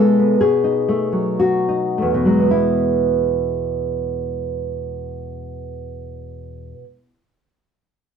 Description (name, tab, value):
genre	romantic piece for solo classical guitar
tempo	51-68 BPM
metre	4/4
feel	rubato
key	E major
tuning	A4 = 441 Hz
part	nylon-string guitar	solo	0.0-7.2 s	E2 to A4	-17 LUFS	equal	none
room	moderate small room reverb, RT60 0.6 s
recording	none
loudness	-16 LUFS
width	side -7 dB against mid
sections	0.0-2.5 A section; 2.5-6.6 B section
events	slowing down 0.0-2.5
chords	0.4 B7; 2.5 E